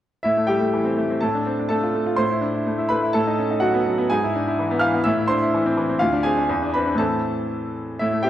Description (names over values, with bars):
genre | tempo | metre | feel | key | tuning
classical, virtuoso piano study | 125 BPM | 2/4 | rubato | A minor | A4 = 440 Hz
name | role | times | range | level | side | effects
bright grand piano | solo | 0.2-8.3 s | D2 to F6 | -19 LUFS | equal | none
room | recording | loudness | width
moderate recital hall reverb, RT60 1.3 s | dark, warm production | -19 LUFS | side -12 dB against mid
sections
0.2-8.0 A section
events
none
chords
0.2 Am; 1.2 Dm/A; 2.2 Am; 3.2 B7/A; 4.1 E/G#; 5.1 Am; 6.0 Dm; 6.5 E7; 7.0 Am